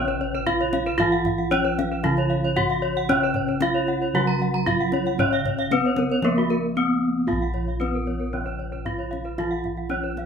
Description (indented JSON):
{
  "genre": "Balinese gamelan",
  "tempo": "114 BPM",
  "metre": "4/4",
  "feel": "straight",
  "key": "unclear",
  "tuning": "A4 = 440 Hz",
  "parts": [
    { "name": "gamelan-type bronze metallophone", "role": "melody", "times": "0.0-10.3 s", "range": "Bb3 to Gb4-20c", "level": "-24 LUFS", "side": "equal", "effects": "none" },
    { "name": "gamelan-type bronze metallophone", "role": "accompaniment", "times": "0.0-10.3 s", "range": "Db3-30c to Bb3", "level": "-30 LUFS", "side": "right 2 dB", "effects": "none" },
    { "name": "gamelan-type bronze metallophone", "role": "arpeggios", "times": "0.0-10.3 s", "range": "Bb4 to Gb5-20c", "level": "-29 LUFS", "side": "left 5 dB", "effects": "none" },
    { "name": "gamelan-type bossed gongs", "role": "bass", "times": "0.0-10.3 s", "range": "Bb1 to F4-30c", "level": "-28 LUFS", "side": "equal", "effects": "none" },
    { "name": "gamelan-type bronze metallophone", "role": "arpeggios", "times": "0.1-10.2 s", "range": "Gb4-20c to Bb5", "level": "-31 LUFS", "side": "right 5 dB", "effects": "none" },
    { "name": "kendang", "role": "percussion", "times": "0.1-10.3 s", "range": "none", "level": "-32 LUFS", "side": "left 2 dB", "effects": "none" }
  ],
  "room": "moderate studio ambience, RT60 0.5 s",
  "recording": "band playing live in one room",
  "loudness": "-21 LUFS",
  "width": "side -7 dB against mid",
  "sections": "0.0-10.3 A section",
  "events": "drum fill 6.6-7.3",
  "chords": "none",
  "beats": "0.47 | 1.00 1.52 2.04 2.57 | 3.09 3.62 4.14 4.67 | 5.19 5.71 6.24 6.76 | 7.29 7.81 8.34 8.86 | 9.38 9.91"
}